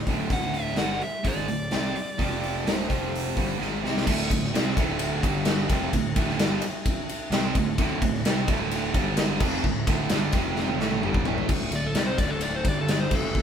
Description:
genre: hard rock.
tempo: 129 BPM.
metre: 4/4.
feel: straight.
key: unclear.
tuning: A4 = 438 Hz.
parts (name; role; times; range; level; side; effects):
distorted electric guitar; riff; 0.0-11.5 s; D2 to C4; -29 LUFS; right 8 dB; overdrive.
overdriven electric guitar; riff; 0.0-13.4 s; D2 to C4; -32 LUFS; left 6 dB; none.
fuzz picked electric bass; bass; 0.0-13.4 s; D1 to C2; -32 LUFS; equal; overdrive.
big rock drum kit; drums; 0.1-13.4 s; crash cymbal, hi-hat, kick drum, ride cymbal, snare drum, toms; -26 LUFS; equal; none.
dark smooth lead guitar; melody; 0.3-3.6, 11.8-13.4 s; A4 to F#5; -31 LUFS; equal; overdrive.
room: moderate studio reverb, RT60 0.7 s.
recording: band playing live in one room.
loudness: -23 LUFS.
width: side -8 dB against mid.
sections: 0.0-4.1 A section; 4.1-11.5 B section; 11.5-13.4 C section.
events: drum fill 3.6-4.1, 10.6-11.5; lead electric guitar solo 11.5-13.4.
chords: 0.0 D; 2.2 F5; 2.7 D5; 2.9 F5; 3.4 G#maj7#11/G; 4.1 D5; 5.2 G5; 5.7 D5; 8.9 G5; 9.4 D5; 10.3 F5; 10.8 D5; 12.7 G5.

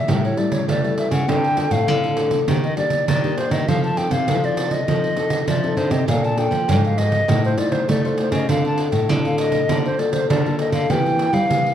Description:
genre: samba and choro.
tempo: 100 BPM.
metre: 4/4.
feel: straight.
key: Bb major.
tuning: A4 = 441 Hz.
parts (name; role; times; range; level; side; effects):
hollow concert flute; melody; 0.0-11.7 s; C5 to A5; -23 LUFS; equal; none.
nylon-string guitar; accompaniment; 0.0-11.7 s; A2 to C5; -24 LUFS; left 4 dB; none.
nylon-string guitar; bass; 0.1-11.7 s; Ab2 to A3; -22 LUFS; equal; none.
pandeiro; percussion; 0.1-11.7 s; none; -23 LUFS; right 3 dB; none.
room: wet recital hall reverb, RT60 1.4 s.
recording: dark, warm production.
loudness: -17 LUFS.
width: side -10 dB against mid.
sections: 0.0-11.7 A section.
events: none.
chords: 0.1 A7; 1.3 Dm7; 2.5 Ebmaj7; 3.7 F7; 6.1 Bbmaj7; 7.3 F7/A; 8.5 Dm7; 9.7 Bbmaj7/D; 10.9 C7/E.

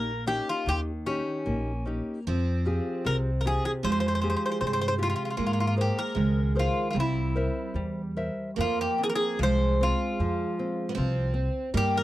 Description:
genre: fado-style ballad.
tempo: 76 BPM.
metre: 2/4.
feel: rubato.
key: F minor from 8.6 s.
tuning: A4 = 438 Hz.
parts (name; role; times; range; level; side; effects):
Greek bouzouki; melody; 0.0-12.0 s; Db4 to C5; -29 LUFS; left 2 dB; none.
picked twelve-string acoustic guitar; second line; 0.0-12.0 s; G3 to C4; -32 LUFS; right 5 dB; none.
nylon-string guitar; accompaniment; 0.0-12.0 s; C3 to E5; -33 LUFS; left 2 dB; none.
upright bass; bass; 0.0-12.0 s; Bb1 to Ab2; -28 LUFS; equal; none.
room: light reverb.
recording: dry, close 1970s-style studio recording.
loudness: -25 LUFS.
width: side -15 dB against mid.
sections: 0.0-8.6 A section; 8.6-12.0 B section.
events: none.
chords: 0.0 Eb7; 2.3 Fmadd9; 5.4 Abadd9; 6.9 C7; 8.6 Fm.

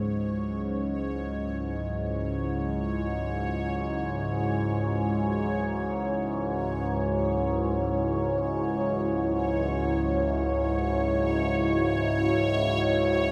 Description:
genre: dark ambient drone.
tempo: free time.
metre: none.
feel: none.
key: unclear.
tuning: A4 = 440 Hz.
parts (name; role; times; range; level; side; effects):
dark analog pad; sustained chords; 0.5-13.3 s; E4 to C#5; -31 LUFS; equal; chorus, phaser.
bronze singing bowl; arpeggios; 0.0-3.6 s; G#2 to F#4; -46 LUFS; equal; none.
overtone-sweeping drone; drone; 0.0-13.3 s; C#2 to G#2; -30 LUFS; equal; chorus, built-in reverb.
bubbling stepped-filter texture; texture; 0.0-13.3 s; C#5; -39 LUFS; equal; chorus, built-in reverb.
room: wet huge ambient reverb, RT60 7.9 s.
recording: none.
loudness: -28 LUFS.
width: mono.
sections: 0.0-13.3 A section.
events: fade-in on synth texture 0.0-13.3.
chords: 0.0 C#m.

